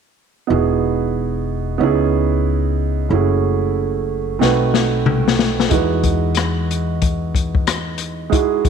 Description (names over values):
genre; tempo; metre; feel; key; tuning
hip hop, jazz-hop; 92 BPM; 4/4; swing 64% on 16ths; E major; A4 = 440 Hz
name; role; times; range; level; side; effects
dark upright piano; accompaniment; 0.5-8.7 s; G#3 to B4; -19 LUFS; right 10 dB; none
upright bass; bass; 0.5-8.3 s; E1 to E2; -20 LUFS; left 2 dB; none
open jazz drum kit; drums; 4.4-8.7 s; hi-hat, kick drum, rim click, snare drum, toms; -18 LUFS; left 5 dB; none
room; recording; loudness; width
light reverb, small room ambience; 1960s-style stereo; -16 LUFS; side -7 dB against mid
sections
0.5-8.7 A section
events
drum fill 4.4-5.7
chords
0.5 Emaj9; 1.8 C#m9; 3.1 F#m7; 4.4 B7b9; 5.7 Emaj9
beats
| 0.49 1.15 1.80 2.45 | 3.10 3.75 4.41 5.06 | 5.71 6.36 7.01 7.67 | 8.32